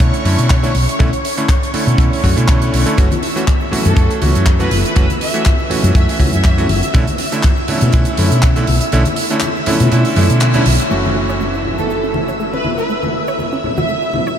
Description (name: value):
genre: nu-disco, nu disco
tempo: 121 BPM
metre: 4/4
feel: swing 54% on 16ths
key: B minor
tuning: A4 = 439 Hz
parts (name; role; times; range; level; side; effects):
- bright electric grand piano; accompaniment; 0.0-14.4 s; D3 to F#4; -19 LUFS; right 2 dB; sidechain pumping, diffuse ambient delay
- string machine, full ensemble; sustained chords; 0.0-14.4 s; C#5 to E6; -23 LUFS; equal; ensemble chorus, sidechain pumping
- hollow-body short-scale fingered electric bass; bass; 0.0-14.4 s; F#1 to B2; -15 LUFS; equal; none
- kick drum; drums; 0.0-8.5 s; none; -14 LUFS; equal; none
- tight funk drum kit; drums; 0.0-14.4 s; handclaps, hi-hat, shaker; -24 LUFS; right 2 dB; low-pass filter on cymbals, low-pass filter on hats, low-pass filter on snare, low-pass filter on perc, low-pass filter on room
- cabasa and congas; percussion; 3.0-14.4 s; none; -23 LUFS; left 3 dB; none
- warm symphonic violin section; melody; 3.9-6.5, 11.8-14.1 s; A4 to E5; -24 LUFS; equal; ping-pong delay
- wide unison pluck; arpeggios; 10.9-14.3 s; A3 to C#5; -24 LUFS; right 1 dB; sidechain pumping, ping-pong delay
room: moderate huge ambient reverb, RT60 6.9 s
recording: dreamy mix soaked in reverb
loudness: -12 LUFS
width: side -9 dB against mid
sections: 0.0-10.9 A section; 10.9-14.4 B section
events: kick drops out 8.9-10.9; band accent 10.4; filter sweep on synth arpeggio sound 10.9-14.4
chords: 0.0 Bm11; 3.0 F#m7; 6.9 Bm11; 10.9 F#m7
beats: 0.00 0.50 | 0.99 1.49 1.99 2.48 | 2.98 3.47 3.97 4.47 | 4.96 5.46 5.95 6.45 | 6.95 7.44 7.94 8.43 | 8.93 9.42 9.92 10.42 | 10.91 11.41 11.90 12.40 | 12.89 13.39 13.89 14.38